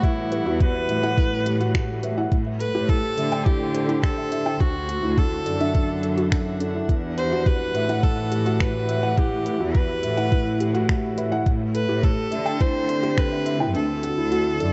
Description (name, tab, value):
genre	piano and strings electronica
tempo	105 BPM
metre	4/4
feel	straight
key	E minor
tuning	A4 = 440 Hz
part	rich viola	melody	0.0-14.7 s	E4 to C5	-30 LUFS	equal	none
part	muted string quartet	sustained chords	0.0-14.7 s	A2 to G5	-35 LUFS	equal	sidechain pumping
part	warbly dusty pluck	arpeggios	0.0-14.7 s	D4 to E5	-35 LUFS	equal	none
part	felt-muted upright piano	riff	0.0-14.7 s	D4 to G5	-30 LUFS	equal	none
part	clear symphonic cello section	bass	0.0-14.7 s	D2 to D3	-29 LUFS	equal	sidechain pumping
part	electronic kick drum	drums	0.0-13.3 s	none	-24 LUFS	equal	studio reverb
part	organic electronic drum kit	drums	0.0-14.7 s	finger snaps, hi-hat	-36 LUFS	equal	studio reverb
room	light reverb, studio reverb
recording	dark, warm production, nothing above 7.9 kHz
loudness	-23 LUFS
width	mono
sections	0.0-14.7 A section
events	kick drops out 13.7-14.7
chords	0.0 Emadd9; 2.3 Am7; 4.6 Dadd9; 6.9 Emadd9; 11.5 Am7; 13.7 Dadd9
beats	| 0.03 0.60 1.18 1.75 | 2.32 2.89 3.46 4.03 | 4.61 5.18 5.75 6.32 | 6.89 7.46 8.03 8.61 | 9.18 9.75 10.32 10.89 | 11.46 12.03 12.61 13.18 | 13.75 14.32